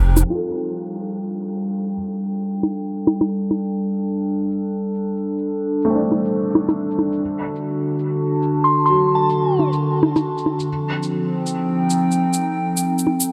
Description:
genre	future garage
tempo	138 BPM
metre	4/4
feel	swing 62% on 16ths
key	unclear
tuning	A4 = 442 Hz
part	felt-muted upright piano	accompaniment	0.0-10.7 s	F#3 to A4	-28 LUFS	equal	tape echo
part	warbly tape-like pad	sustained chords	0.0-13.3 s	D3 to A5	-23 LUFS	equal	chorus, built-in reverb, vintage 12-bit sampler grit
part	bongos and shaker	drums	0.2-13.3 s	none	-22 LUFS	equal	low-pass filter on perc, low-pass filter on snare
part	glassy synth bell	melody	8.6-9.6 s	A5 to C6	-23 LUFS	equal	chorus, phaser, tape echo
room	moderate huge ambient reverb, RT60 7.0 s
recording	low-pass filter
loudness	-21 LUFS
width	mono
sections	0.2-13.3 A section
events	filter sweep on drum 0.2-13.3; filter sweep on ambient pad 0.2-13.3; filter sweep 0.2-13.3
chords	0.2 Gsus2; 7.2 D; 10.7 F7

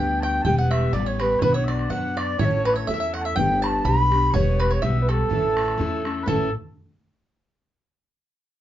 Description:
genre	celtic folk, Celtic polka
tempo	123 BPM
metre	2/4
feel	swing 54% on 8ths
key	A mixolydian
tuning	A4 = 441 Hz
part	mellow wooden flute	melody	0.0-6.5 s	A4 to B5	-24 LUFS	right 1 dB	none
part	bluegrass banjo	second line	0.0-6.5 s	A4 to B5	-33 LUFS	right 4 dB	none
part	mellow small bagpipes	second line	0.0-6.5 s	A4 to C#6	-31 LUFS	left 2 dB	none
part	fingerpicked steel-string acoustic guitar	accompaniment	0.0-6.5 s	A2 to B4	-27 LUFS	left 3 dB	none
part	upright bass	bass	0.0-6.5 s	E1 to F#2	-25 LUFS	equal	none
part	bodhran	percussion	0.2-6.5 s	none	-30 LUFS	right 2 dB	none
room	light reverb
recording	nothing above 7.6 kHz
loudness	-19 LUFS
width	side -12 dB against mid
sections	0.0-6.3 A section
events	none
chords	0.4 Em; 1.4 Bm; 2.4 A; 3.4 G; 4.3 Em; 5.3 A

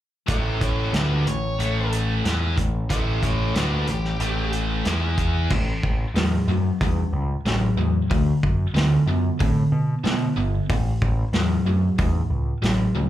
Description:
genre	blues rock power trio and southern rock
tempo	92 BPM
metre	4/4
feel	straight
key	A mixolydian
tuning	A4 = 440 Hz
part	biting lead guitar	melody	0.3-4.5 s	E4 to E5	-30 LUFS	equal	overdrive, slapback echo
part	biting overdriven guitar	riff	0.3-13.1 s	A2 to E4	-25 LUFS	equal	slapback echo
part	growling picked electric bass	bass	0.3-13.1 s	G1 to B2	-23 LUFS	equal	overdrive
part	vintage drum kit	drums	0.3-12.8 s	crash cymbal, hi-hat, kick drum, snare drum	-25 LUFS	equal	none
room	little or no reverb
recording	live gig heard through the venue's PA, club ambience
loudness	-20 LUFS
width	side -13 dB against mid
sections	0.3-5.5 A section; 5.5-13.1 B section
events	none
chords	0.3 A7; 4.9 E5; 5.5 A5; 8.1 D; 10.7 A

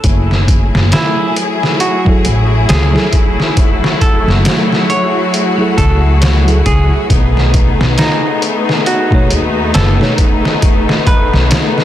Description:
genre	trip hop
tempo	68 BPM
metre	4/4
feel	swing 59% on 16ths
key	F# dorian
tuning	A4 = 440 Hz
part	bright symphonic string section	sustained chords	0.0-11.8 s	F#3 to G#4	-16 LUFS	left 2 dB	none
part	semi-hollow electric guitar	arpeggios	0.0-11.5 s	D#4 to C#5	-20 LUFS	right 2 dB	vintage 12-bit sampler grit, tape echo
part	upright bass	bass	0.0-11.5 s	F#1 to D#2	-12 LUFS	equal	none
part	trip hop sampler-style drum kit	drums	0.0-11.8 s	hi-hat, kick drum, snare drum	-13 LUFS	equal	overdrive
part	bowed-like drone	texture	0.6-11.8 s	G#4	-25 LUFS	right 2 dB	built-in reverb
part	bell-like tine electric piano	accompaniment	2.0-10.1 s	B2 to C#5	-21 LUFS	right 1 dB	none
room	digital ambience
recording	dense, heavily limited modern master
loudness	-9 LUFS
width	side -12 dB against mid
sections	0.0-11.8 A section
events	none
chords	0.0 F#m9; 7.1 B7

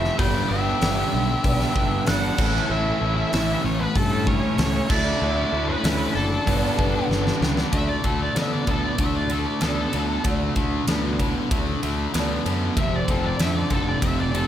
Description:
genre	classic rock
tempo	95 BPM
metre	4/4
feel	straight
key	unclear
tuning	A4 = 435 Hz
part	octave-fuzz lead guitar	melody	0.0-14.5 s	A4 to G5	-28 LUFS	left 1 dB	wah, distortion, slapback echo
part	octave-fuzz lead guitar	second line	0.0-7.1 s	A3 to B4	-30 LUFS	right 3 dB	distortion
part	fingerpicked twelve-string acoustic guitar	accompaniment	0.0-14.5 s	A2 to C5	-33 LUFS	left 1 dB	none
part	bright tonewheel organ	sustained chords	0.0-7.7 s	D3 to C5	-37 LUFS	equal	none
part	distorted electric guitar	riff	0.0-14.5 s	F2 to F4	-29 LUFS	left 8 dB	overdrive
part	distorted electric guitar	riff	0.0-14.5 s	F2 to F4	-28 LUFS	right 6 dB	distortion
part	fuzz fingered electric bass	bass	0.0-14.5 s	F1 to D3	-26 LUFS	equal	overdrive
part	huge arena drum kit	drums	0.0-14.5 s	crash cymbal, hi-hat, kick drum, ride cymbal, snare drum	-26 LUFS	equal	none
room	light reverb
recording	none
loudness	-20 LUFS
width	side -10 dB against mid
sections	0.0-7.7 A section; 7.7-14.5 B section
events	drum fill 7.1-7.7; lead electric guitar solo 7.7-14.5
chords	0.2 G; 2.4 A; 4.9 Dsus2; 6.5 Gadd9; 7.7 Dadd9; 12.8 F

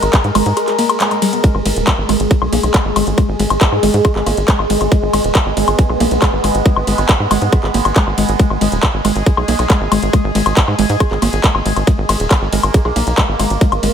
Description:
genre	psychedelic trance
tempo	138 BPM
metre	4/4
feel	straight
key	G# minor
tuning	A4 = 440 Hz
part	bubbling stepped-filter texture	sustained chords	0.0-13.9 s	G#3 to A#4	-19 LUFS	right 1 dB	chorus, built-in reverb, sidechain pumping
part	tight sequencer bass	bass	0.0-13.9 s	D#1 to G#2	-18 LUFS	equal	none
part	garage drum kit	drums	0.0-13.9 s	handclaps, hi-hat, ride cymbal, woodblock	-19 LUFS	left 2 dB	none
part	electronic kick drum	drums	0.1-13.7 s	none	-12 LUFS	equal	none
part	woody wave-folded pluck	riff	0.4-13.9 s	G3 to G#4	-20 LUFS	moving between left 6 dB and right 10 dB	chorus, auto-pan, sidechain pumping, dub echo
room	light reverb, digital ambience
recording	none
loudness	-12 LUFS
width	side -8 dB against mid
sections	0.0-13.9 A section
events	none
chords	0.0 G#5

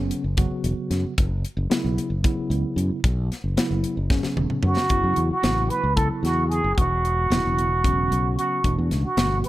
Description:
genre	electric jazz fusion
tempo	225 BPM (eighths)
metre	7/8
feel	straight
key	F# minor from 4.9 s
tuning	A4 = 440 Hz
part	tine electric piano	accompaniment	0.0-9.5 s	B2 to F#4	-28 LUFS	equal	medium stereo tremolo
part	fretless electric bass	bass	0.0-9.4 s	E1 to F#2	-24 LUFS	equal	none
part	crisp fusion drum kit	drums	0.1-9.5 s	hi-hat, kick drum, snare drum, toms	-24 LUFS	left 1 dB	none
part	trumpet with plunger mute	melody	4.7-9.5 s	F#4 to B4	-23 LUFS	right 2 dB	none
room	small room ambience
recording	none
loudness	-20 LUFS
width	side -16 dB against mid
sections	0.0-4.9 A section; 4.9-9.5 B section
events	drum fill 4.1-4.9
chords	0.0 F#7sus4; 4.9 F#7(no3); 8.6 Em7

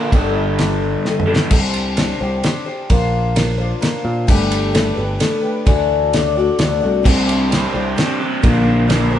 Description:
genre	folk rock and heartland rock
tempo	130 BPM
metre	3/4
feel	straight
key	unclear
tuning	A4 = 441 Hz
part	picked twelve-string acoustic guitar	accompaniment	0.0-9.2 s	D3 to D5	-20 LUFS	left 4 dB	none
part	crunchy overdriven guitar	riff	0.0-1.5, 7.0-9.2 s	G2 to Bb4	-18 LUFS	equal	phaser
part	picked electric bass	bass	0.1-9.2 s	G1 to Bb2	-21 LUFS	equal	none
part	damped 70s drum kit	drums	0.1-9.0 s	crash cymbal, kick drum, ride cymbal, snare drum, toms	-18 LUFS	equal	none
room	moderate large studio reverb, RT60 1.1 s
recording	band playing live in one room, nothing above 11.0 kHz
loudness	-14 LUFS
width	side -10 dB against mid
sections	0.0-1.5 A section; 1.5-9.2 B section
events	drum fill 1.0-1.5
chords	0.1 Gadd9; 1.5 Csus2; 2.9 Bbadd9; 4.3 Gadd9; 5.7 Dadd9; 7.0 Csus2; 8.4 Bbadd9

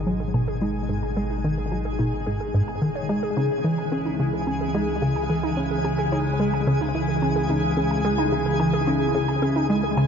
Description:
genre	ambient, sequencer-driven space music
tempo	109 BPM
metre	4/4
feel	straight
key	unclear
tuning	A4 = 440 Hz
part	evolving wavetable pad	sustained chords	0.0-10.1 s	B2 to G#4	-26 LUFS	left 1 dB	chorus, built-in reverb, phaser
part	warbly dusty pluck	arpeggios	0.0-10.0 s	G#3 to G#5	-30 LUFS	right 1 dB	chorus, auto-pan, ping-pong delay
part	analog drone	bass	0.0-10.1 s	G#1 to C#2	-32 LUFS	equal	chorus, tube saturation
part	twinkling granular texture	texture	0.0-10.1 s	G#4 to G#5	-31 LUFS	equal	built-in reverb
part	plucky analog bass	riff	0.1-10.1 s	G#2 to C#4	-25 LUFS	equal	ping-pong delay
room	moderate huge ambient reverb, RT60 8.4 s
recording	dark, warm production, nothing above 7.6 kHz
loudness	-21 LUFS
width	side -7 dB against mid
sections	0.0-10.1 A section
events	fade-in on synth arpeggio sound 0.0-10.1; fade-in on ambient pad 0.0-10.1; fade-in on synth texture 0.0-10.1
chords	0.0 G#m; 3.1 C#m

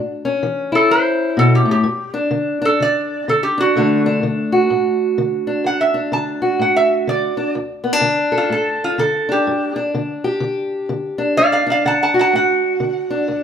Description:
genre	acoustic country blues, solo or duo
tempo	126 BPM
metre	4/4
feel	swing 61% on 8ths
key	D major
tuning	A4 = 439 Hz
part	fingerpicked steel-string acoustic guitar	accompaniment	0.0-13.4 s	D2 to A4	-17 LUFS	equal	none
part	lap resonator guitar	melody	0.8-13.4 s	F4 to A5	-17 LUFS	right 1 dB	none
room	moderate large studio reverb, RT60 1.1 s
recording	band playing live in one room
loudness	-15 LUFS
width	side -8 dB against mid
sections	0.0-7.6 A section; 7.6-13.4 B section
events	resonator guitar played with a steel bar solo 7.6-13.4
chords	0.0 A; 1.9 G5; 3.8 D; 7.6 D5; 9.5 G5; 11.4 D

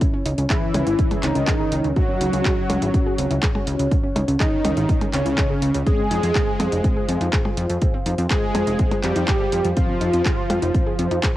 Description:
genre	melodic techno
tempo	123 BPM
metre	4/4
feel	straight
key	unclear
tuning	A4 = 442 Hz
part	dark analog pad	sustained chords	0.0-11.4 s	C#4 to C#5	-29 LUFS	left 1 dB	chorus, phaser, sidechain pumping, cassette tape
part	soft round pluck	arpeggios	0.0-11.3 s	B#3 to G#4	-30 LUFS	equal	chorus, sidechain pumping, cassette tape, analog delay
part	electronic kick drum	drums	0.0-11.3 s	none	-21 LUFS	equal	none
part	techno drum kit	drums	0.0-11.3 s	handclaps, hi-hat, percussion blips	-27 LUFS	equal	sidechain pumping on hats, sidechain pumping on perc
part	plucky analog bass	bass	0.3-11.2 s	F1 to F2	-23 LUFS	equal	tube saturation, sidechain pumping
part	wide unison lead	melody	0.5-11.1 s	C#4 to Ab4	-25 LUFS	equal	analog chorus, sidechain pumping, cassette tape, analog delay
part	soft supersaw	second line	0.5-11.1 s	C#3 to Ab3	-28 LUFS	equal	sidechain pumping, cassette tape, analog delay
room	little or no reverb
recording	home recording on cassette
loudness	-18 LUFS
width	side -14 dB against mid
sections	0.0-11.4 A section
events	none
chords	0.0 C#m; 5.9 Fm

